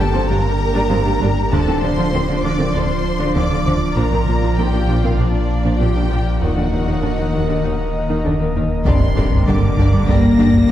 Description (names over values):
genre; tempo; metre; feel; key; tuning
cinematic, hybrid orchestral and electronic film score; 98 BPM; 4/4; straight; G minor; A4 = 440 Hz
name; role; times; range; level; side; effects
clear symphonic violin section; melody; 0.0-10.7 s; D5 to Bb6; -27 LUFS; left 3 dB; none
clear symphonic violin section; second line; 0.0-10.7 s; D4 to D5; -27 LUFS; equal; none
rich symphonic viola section; accompaniment; 0.0-10.7 s; D3 to Eb4; -24 LUFS; equal; none
airy breathy pad; sustained chords; 0.0-10.7 s; Eb3 to Eb5; -22 LUFS; equal; chorus
clear symphonic cello section; bass; 0.0-10.7 s; Eb2 to Bb3; -22 LUFS; equal; none
clear symphonic double bass section; bass; 0.0-10.7 s; G1 to G2; -22 LUFS; right 2 dB; none
pure sine sub bass; bass; 0.0-10.7 s; D1 to Bb1; -22 LUFS; equal; none
mellow French horn section; sustained chords; 8.9-10.3 s; G3 to D4; -28 LUFS; left 2 dB; none
rubbery square bass; riff; 8.9-10.7 s; G2 to G3; -20 LUFS; left 1 dB; none
solo taiko drums; drums; 8.9-10.7 s; none; -19 LUFS; equal; none
impact; sound effects; 8.9-10.7 s; none; -25 LUFS; equal; none
room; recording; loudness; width
wet scoring stage reverb, RT60 1.6 s; heard from further back in the room; -14 LUFS; side -12 dB against mid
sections
0.0-8.9 A section; 8.9-10.7 A section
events
impact 8.9-10.7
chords
0.0 Gm; 1.5 Dm; 4.0 Bb; 6.4 Ebm; 8.9 Gm